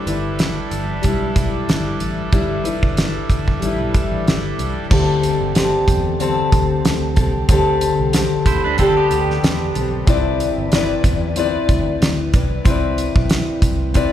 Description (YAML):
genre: indie pop, bedroom pop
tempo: 93 BPM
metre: 4/4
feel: swing 55% on 16ths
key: unclear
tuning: A4 = 440 Hz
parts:
  - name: fingerpicked steel-string acoustic guitar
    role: accompaniment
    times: 0.0-14.1 s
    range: D3 to D5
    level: -19 LUFS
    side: left 2 dB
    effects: warbly pitch drift
  - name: pipe organ, trumpet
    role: sustained chords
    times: 0.0-4.9 s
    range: G3 to B4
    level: -29 LUFS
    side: right 2 dB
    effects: none
  - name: vintage muted picked electric bass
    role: bass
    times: 0.1-14.0 s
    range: G1 to E2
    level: -24 LUFS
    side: equal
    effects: none
  - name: damped 70s drum kit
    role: drums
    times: 0.1-14.1 s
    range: crash cymbal, hi-hat, kick drum, snare drum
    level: -19 LUFS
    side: right 1 dB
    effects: none
  - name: electric guitar at the edge of break-up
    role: second line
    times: 8.5-9.9 s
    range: B3 to C5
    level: -26 LUFS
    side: right 5 dB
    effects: none
room: moderate cathedral reverb, RT60 5.8 s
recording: band playing live in one room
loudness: -15 LUFS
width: side -11 dB against mid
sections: 0.0-4.9 A section; 4.9-14.1 B section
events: none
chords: 0.0 G6; 10.1 Cmaj9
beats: 0.39 1.04 1.68 | 2.33 2.97 3.62 4.26 | 4.91 5.55 6.20 6.85 | 7.49 8.14 8.78 9.43 | 10.07 10.72 11.36 12.01 | 12.65 13.30 13.94